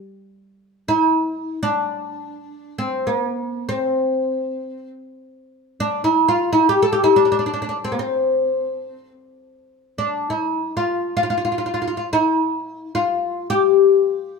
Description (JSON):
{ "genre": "Arabic maqam ensemble", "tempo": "free time", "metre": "none", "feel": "none", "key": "C maqam rast", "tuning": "A4 = 440 Hz", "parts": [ { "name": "oud", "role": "solo", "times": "0.9-14.4 s", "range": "Bb3+50c to A4", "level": "-18 LUFS", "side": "left 2 dB", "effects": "none" } ], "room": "wet stone room reverb, RT60 1.1 s", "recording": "band playing live in one room", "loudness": "-18 LUFS", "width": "side -4 dB against mid", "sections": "0.0-14.4 A section", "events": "none", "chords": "none", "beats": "free time" }